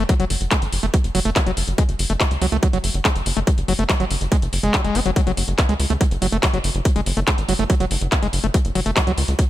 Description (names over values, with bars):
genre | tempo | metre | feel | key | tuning
psychedelic trance | 142 BPM | 4/4 | straight | F# minor | A4 = 440 Hz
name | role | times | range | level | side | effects
screaming distorted acid line | riff | 0.0-9.1 s | F#3 to C#4 | -24 LUFS | moving between left 6 dB and right 6 dB | distortion, chorus, auto-pan, sidechain pumping, tape echo
tight sequencer bass | bass | 0.0-9.3 s | F#1 to C#2 | -22 LUFS | equal | none
electronic kick drum | drums | 0.1-9.5 s | none | -18 LUFS | equal | overdrive
techno drum kit | drums | 0.1-9.5 s | handclaps, hi-hat | -24 LUFS | left 1 dB | none
room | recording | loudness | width
little or no reverb | none | -17 LUFS | side -14 dB against mid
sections
0.0-9.5 A section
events
none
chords
0.0 F#5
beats
| 0.09 0.51 0.94 1.36 | 1.78 2.21 2.63 3.05 | 3.47 3.90 4.32 4.74 | 5.16 5.58 6.01 6.43 | 6.85 7.28 7.70 8.12 | 8.54 8.96 9.39